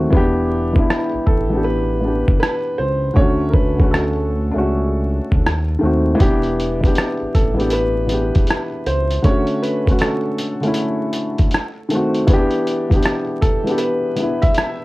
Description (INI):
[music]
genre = lo-fi hip hop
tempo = 79 BPM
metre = 4/4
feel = swing 66% on 16ths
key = E dorian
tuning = A4 = 440 Hz
[part]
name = felt-muted upright piano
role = accompaniment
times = 0.0-14.8 s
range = D3 to G4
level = -19 LUFS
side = left 1 dB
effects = cassette tape
[part]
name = smooth gliding synth bass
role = bass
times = 0.0-9.2 s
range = E1 to D#2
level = -21 LUFS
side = equal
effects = transformer saturation
[part]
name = dusty soul sampler-style drum kit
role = drums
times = 0.1-14.8 s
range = hi-hat, kick drum, rim click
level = -16 LUFS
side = equal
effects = none
[part]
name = warm upright piano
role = melody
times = 1.3-14.8 s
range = A4 to E5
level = -24 LUFS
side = right 1 dB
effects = tape echo, plate reverb
[sound]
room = light reverb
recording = worn, warbling old tape, cassette tape, vinyl crackle, warbly pitch drift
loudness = -15 LUFS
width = side -20 dB against mid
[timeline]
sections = 0.0-14.8 A section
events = break 0.0-6.2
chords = 0.1 Em7; 3.2 Dmaj7; 5.4 D#dim7; 6.2 Em7; 9.2 Dmaj7; 11.5 D#dim7; 12.3 Em7